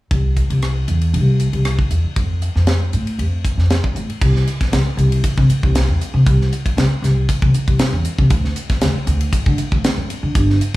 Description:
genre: electric jazz fusion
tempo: 117 BPM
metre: 4/4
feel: swing 53% on 16ths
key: C major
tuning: A4 = 440 Hz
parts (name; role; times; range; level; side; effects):
- upright bass; bass; 0.1-10.6 s; G1 to D3; -16 LUFS; equal; none
- crisp fusion drum kit; drums; 0.1-10.8 s; crash cymbal, hi-hat, kick drum, ride cymbal, rim click, snare drum; -20 LUFS; equal; none
room: little or no reverb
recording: studio reverb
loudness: -14 LUFS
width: side -18 dB against mid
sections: 0.1-4.2 A section; 4.2-10.8 B section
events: none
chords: none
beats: | 0.10 0.62 1.13 1.65 | 2.16 2.67 3.19 3.70 | 4.21 4.72 5.24 5.75 | 6.26 6.77 7.28 7.79 | 8.31 8.82 9.33 9.84 | 10.35

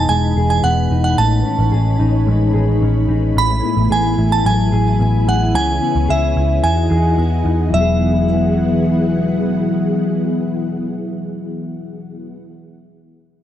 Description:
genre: dream pop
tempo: 110 BPM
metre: 4/4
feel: straight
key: E major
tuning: A4 = 441 Hz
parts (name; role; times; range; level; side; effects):
- glassy synth bell; melody; 0.0-12.3 s; E5 to B5; -20 LUFS; right 2 dB; chorus, digital delay
- string machine, cellos; sustained chords; 0.0-12.3 s; E3 to B5; -21 LUFS; equal; ensemble chorus
- mellow electric guitar; arpeggios; 0.0-12.4 s; A2 to G#4; -20 LUFS; left 4 dB; wide subtle chorus, digital delay
- vintage muted picked electric bass; bass; 0.0-12.3 s; E1 to E2; -17 LUFS; equal; none
room: light reverb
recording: dark, warm production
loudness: -14 LUFS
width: side -11 dB against mid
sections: 0.0-7.7 A section; 7.7-12.1 B section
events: none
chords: 0.0 Emaj7; 1.2 Amaj9#11; 3.4 F#m11/A; 5.5 C#m7; 6.6 Emaj9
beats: 0.08 0.63 | 1.18 1.72 2.27 2.81 | 3.36 3.90 4.45 4.99 | 5.54 6.08 6.63 7.17 | 7.72 8.27 8.81 9.36 | 9.90 10.45 10.99 11.54

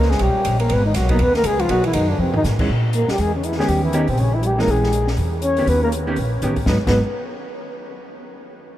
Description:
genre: jazz, small-group swing and bop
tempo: 241 BPM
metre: 4/4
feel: swing 60% on 8ths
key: G# minor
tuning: A4 = 439 Hz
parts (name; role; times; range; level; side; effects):
- breathy flugelhorn; melody; 0.0-7.0 s; B#3 to C#5; -22 LUFS; left 2 dB; none
- mellow trombone; second line; 0.0-7.0 s; C3 to C#4; -26 LUFS; right 2 dB; none
- upright bass; bass; 0.0-7.0 s; G#1 to A#2; -20 LUFS; equal; none
- open jazz drum kit; drums; 0.0-6.9 s; crash cymbal, hi-hat, kick drum, ride cymbal, snare drum, toms; -27 LUFS; equal; none
- vintage hollow-body jazz guitar; accompaniment; 1.1-7.0 s; D#3 to G4; -26 LUFS; right 2 dB; none
room: moderate huge ambient reverb, RT60 9.4 s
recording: in a vast, echoing space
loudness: -16 LUFS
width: side -13 dB against mid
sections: 0.0-2.7 A section; 2.7-6.7 B section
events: drum fill 2.2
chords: 0.0 D#7 (rootless); 0.7 G#m7; 2.2 F; 2.7 A#dim; 3.7 D#7b9b13; 5.7 D#7b13; 6.7 G#m7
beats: 0.20 0.45 | 0.70 0.95 1.20 1.45 | 1.70 1.95 2.19 2.44 | 2.69 2.94 3.19 3.44 | 3.69 3.94 4.18 4.43 | 4.68 4.93 5.18 5.43 | 5.68 5.92 6.17 6.42 | 6.67 6.92

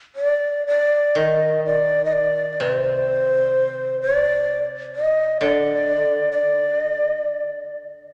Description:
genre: japanese traditional, Japanese chamber music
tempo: 57-66 BPM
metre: 4/4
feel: rubato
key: unclear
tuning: A4 = 440 Hz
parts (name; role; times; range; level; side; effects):
- breathy long shakuhachi; melody; 0.2-7.7 s; C5 to Eb5; -21 LUFS; equal; none
- koto; accompaniment; 1.2-8.1 s; C3 to Eb3; -30 LUFS; equal; none
room: wet church reverb, RT60 3.2 s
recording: none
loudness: -20 LUFS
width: mono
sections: 0.0-1.2 A section; 1.2-8.1 B section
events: none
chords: none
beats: 0.17 | 1.17 2.13 3.09 4.03 | 4.96 5.88 6.79 7.70

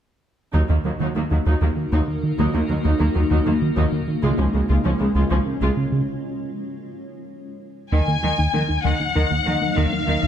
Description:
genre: cinematic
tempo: 65 BPM (dotted quarters)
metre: 6/8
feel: straight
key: Eb minor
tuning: A4 = 436 Hz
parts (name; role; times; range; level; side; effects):
- rich symphonic viola section; accompaniment; 0.5-5.7 s; Db3 to F4; -27 LUFS; equal; none
- granular cloud pad; sustained chords; 1.3-10.3 s; Gb3 to Eb5; -27 LUFS; left 1 dB; built-in reverb
- tight sequenced synth; arpeggios; 0.5-10.3 s; Db3 to Eb4; -30 LUFS; left 2 dB; chorus, tape echo
- chorused synth bass; riff; 0.5-10.3 s; Db2 to Eb3; -22 LUFS; right 1 dB; none
- rich studio cello section; bass; 0.5-10.2 s; Db2 to Eb3; -26 LUFS; right 1 dB; none
- warm studio violin section; melody; 7.9-10.3 s; F5 to Ab5; -23 LUFS; left 5 dB; none
room: moderate scoring stage reverb, RT60 1.6 s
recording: none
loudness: -18 LUFS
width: side -9 dB against mid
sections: 0.5-7.9 A section; 7.9-10.3 B section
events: break 6.1-7.9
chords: 0.5 Ebm; 4.2 Db; 7.9 Ebm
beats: | 0.54 1.46 | 2.39 3.31 | 4.23 5.16 | 6.08 7.00 | 7.92 8.85 | 9.77

